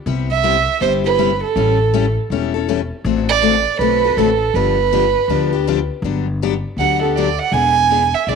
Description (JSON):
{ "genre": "acoustic string swing (jazz manouche)", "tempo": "161 BPM", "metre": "4/4", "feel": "swing 63% on 8ths", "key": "unclear", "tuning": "A4 = 440 Hz", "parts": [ { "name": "picked steel-string acoustic guitar", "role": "accompaniment", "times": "0.1-8.4 s", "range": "C3 to A4", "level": "-20 LUFS", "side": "left 15 dB", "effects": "none" }, { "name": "upright bass", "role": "bass", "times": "0.1-8.4 s", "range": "E1 to D2", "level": "-21 LUFS", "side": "left 2 dB", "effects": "none" }, { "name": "warm violin", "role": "melody", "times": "0.3-8.4 s", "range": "A4 to G#5", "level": "-16 LUFS", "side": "right 8 dB", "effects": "slapback echo" } ], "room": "moderate spring reverb, RT60 1.8 s, studio ambience", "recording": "1960s-style stereo with parts hard left and right", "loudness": "-14 LUFS", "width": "side -5 dB against mid", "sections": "0.0-6.0 A section; 6.0-8.4 B section", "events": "violin solo 6.0-8.4", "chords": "0.1 Cmaj7; 1.6 A7; 3.0 D7/A; 4.5 G7; 6.0 Gmaj7; 7.5 E7", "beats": "| 0.06 0.43 0.81 1.18 | 1.55 1.93 2.30 2.67 | 3.05 3.42 3.80 4.17 | 4.54 4.92 5.29 5.66 | 6.04 6.41 6.78 7.16 | 7.53 7.90 8.28" }